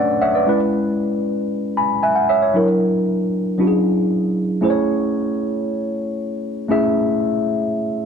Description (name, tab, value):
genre	disco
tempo	116 BPM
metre	4/4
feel	straight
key	A major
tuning	A4 = 440 Hz
part	mellow tine electric piano	solo	0.0-8.1 s	F#3 to B5	-17 LUFS	equal	wide subtle chorus
room	moderate echo chamber reverb, RT60 1.8 s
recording	none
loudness	-17 LUFS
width	side -6 dB against mid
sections	0.0-4.6 A section; 4.6-8.1 B section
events	tine electric piano fill 0.0-0.5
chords	0.5 C#m7; 2.5 F#aug7; 3.6 E13; 4.6 Amaj7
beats	| 0.47 0.99 1.51 2.03 | 2.55 3.07 3.59 4.11 | 4.62 5.14 5.66 6.18 | 6.70 7.22 7.73